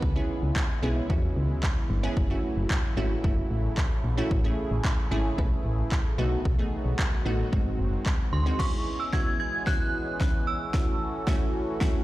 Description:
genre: dance-pop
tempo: 112 BPM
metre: 4/4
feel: straight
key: C# minor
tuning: A4 = 440 Hz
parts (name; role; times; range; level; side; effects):
- glassy wavetable pluck; accompaniment; 0.0-12.0 s; G#3 to B4; -32 LUFS; right 1 dB; chorus, sidechain pumping
- soft supersaw; sustained chords; 0.0-12.0 s; C#3 to A4; -36 LUFS; equal; phaser, sidechain pumping
- solid FM bass; bass; 0.0-8.5 s; F#1 to E2; -27 LUFS; equal; sidechain pumping
- deep house drum kit; drums; 0.0-11.9 s; crash cymbal, handclaps, kick drum, snare drum; -27 LUFS; equal; overdrive
- synth chime; melody; 8.3-11.2 s; B#5 to G#6; -31 LUFS; right 2 dB; ensemble chorus, ping-pong delay
room: digital ambience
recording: played on a big sound system in a bare room, large studio reverb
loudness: -24 LUFS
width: side -16 dB against mid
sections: 0.0-8.6 A section; 8.6-12.0 B section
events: build-up 8.6-12.0; drum fill 8.6-12.0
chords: 0.0 C#m7; 2.2 F#m7; 4.3 Amaj7; 6.2 B7; 7.5 G#7; 8.6 C#m7; 10.7 F#m7

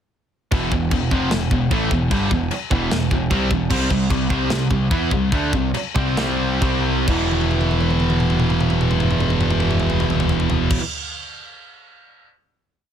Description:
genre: heavy metal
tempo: 128-151 BPM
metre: 4/4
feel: straight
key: E minor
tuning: A4 = 440 Hz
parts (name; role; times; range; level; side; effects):
- heavy high-gain guitar; riff; 0.5-10.8 s; E2 to E4; -24 LUFS; right 10 dB; distortion
- overdriven semi-hollow guitar; riff; 0.5-10.8 s; E2 to E4; -24 LUFS; right 1 dB; none
- scooped high-gain guitar; riff; 0.5-10.8 s; E2 to E4; -25 LUFS; left 10 dB; distortion
- growling picked electric bass; bass; 0.5-10.8 s; E1 to E2; -24 LUFS; equal; overdrive
- tight metal drum kit; drums; 0.5-12.3 s; china cymbal, crash cymbal, kick drum, snare drum, toms; -23 LUFS; left 1 dB; none
room: little or no reverb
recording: dense, heavily limited modern master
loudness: -17 LUFS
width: side -9 dB against mid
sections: 0.5-7.1 riff; 7.1-10.8 final chord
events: slowing down 3.7-7.1; drum fill 7.3-10.7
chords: 0.5 Em; 3.7 C5; 7.1 E5

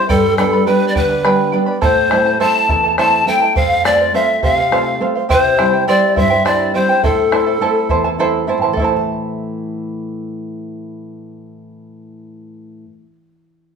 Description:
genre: andean folk, Andean ensemble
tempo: 69 BPM (dotted quarters)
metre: 6/8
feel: straight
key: A minor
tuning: A4 = 439 Hz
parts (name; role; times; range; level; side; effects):
- breathy bright pan flute; melody; 0.0-8.2 s; A4 to A5; -16 LUFS; left 2 dB; none
- polished pan flute; second line; 0.0-8.2 s; A4 to A5; -20 LUFS; left 2 dB; none
- charango; accompaniment; 0.0-13.1 s; E4 to B5; -18 LUFS; right 4 dB; none
- nylon-string guitar; accompaniment; 0.0-13.2 s; E2 to A5; -21 LUFS; equal; none
- bombo; percussion; 0.1-9.0 s; none; -21 LUFS; equal; none
room: moderate large studio reverb, RT60 0.8 s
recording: band playing live in one room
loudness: -12 LUFS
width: side -6 dB against mid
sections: 0.0-8.8 A section; 8.8-12.2 B section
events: none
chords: 0.1 G; 1.8 Am; 3.6 F; 5.3 C; 7.0 Am

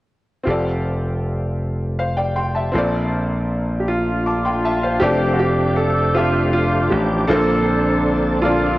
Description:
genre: gospel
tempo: 53 BPM (dotted quarters)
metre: 6/8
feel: straight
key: F major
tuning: A4 = 437 Hz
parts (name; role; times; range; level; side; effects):
- bright upright piano; accompaniment; 0.4-8.8 s; Bb2 to D6; -22 LUFS; left 1 dB; cassette tape
- slap bass; bass; 0.5-8.8 s; F1 to Bb1; -21 LUFS; equal; none
- clear baby grand piano; melody; 3.8-8.8 s; F4 to A4; -22 LUFS; right 2 dB; cassette tape
- mellow horn section; melody; 3.9-8.8 s; A3 to A4; -22 LUFS; left 2 dB; cassette tape
- overdriven tonewheel organ; sustained chords; 5.0-8.8 s; D3 to A4; -22 LUFS; right 1 dB; slow rotary speaker, chorus vibrato, cassette tape
room: light reverb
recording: home recording on cassette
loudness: -17 LUFS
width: side -17 dB against mid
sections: 0.5-5.0 A section; 5.0-8.8 B section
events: none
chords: 0.5 F69; 2.7 Bbmaj9; 5.0 F69; 7.3 Bbmaj9

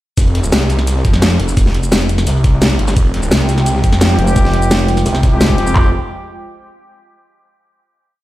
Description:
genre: dark technical drum and bass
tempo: 172 BPM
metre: 4/4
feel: straight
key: F minor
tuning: A4 = 440 Hz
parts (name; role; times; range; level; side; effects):
- snarling distorted saw bass; bass; 0.2-5.9 s; F1 to F2; -14 LUFS; equal; distortion
- crunchy breakbeat drum kit; drums; 0.2-5.7 s; hi-hat, snare drum; -29 LUFS; equal; high-pass filter on hats, high-pass filter on snare, high-pass filter on room
- dubstep drum kit; drums; 0.2-5.8 s; handclaps, kick drum; -13 LUFS; equal; none
- dubstep drum kit; drums; 0.2-5.7 s; hi-hat, shaker, snare drum; -16 LUFS; equal; none
- dark analog pad; sustained chords; 3.3-5.9 s; Ab3 to G5; -21 LUFS; right 1 dB; chorus, sidechain pumping
- warm brass ensemble; stabs; 4.1-5.9 s; Ab3 to G4; -21 LUFS; left 2 dB; dub echo
- growling FM bass; bass; 4.2-5.0 s; F1; -15 LUFS; equal; none
room: light reverb, small room ambience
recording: played on a big sound system in a bare room, stone room reverb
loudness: -11 LUFS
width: side -16 dB against mid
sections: 0.2-5.8 drop; 5.8-7.2 final chord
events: drop 0.2-5.8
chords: 0.2 Fmadd9; 5.8 Fsus2

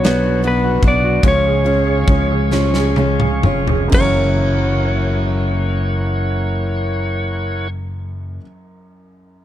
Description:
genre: six-eight pop ballad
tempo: 40-52 BPM (dotted quarters)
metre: 6/8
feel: straight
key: unclear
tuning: A4 = 439 Hz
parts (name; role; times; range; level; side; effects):
- clean lap steel guitar; melody; 0.0-7.7 s; B4 to D5; -22 LUFS; left 1 dB; none
- clear baby grand piano; accompaniment; 0.0-9.4 s; F#2 to A#4; -22 LUFS; right 3 dB; none
- tonewheel organ; sustained chords; 0.0-7.7 s; D4 to C#6; -24 LUFS; left 1 dB; slow rotary speaker
- picked steel-string acoustic guitar; arpeggios; 0.0-8.5 s; F#2 to F#4; -26 LUFS; left 10 dB; none
- fretless electric bass; bass; 0.0-8.4 s; E#1 to C#2; -19 LUFS; equal; none
- huge arena drum kit; drums; 0.0-4.2 s; crash cymbal, kick drum, ride cymbal, snare drum, toms; -20 LUFS; equal; none
room: little or no reverb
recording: none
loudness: -14 LUFS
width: side -12 dB against mid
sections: 0.0-3.9 A section; 3.9-6.9 B section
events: slowing down 0.0-3.9; drum fill 2.5-3.9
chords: 0.0 Bm; 1.2 C#; 3.9 F#7

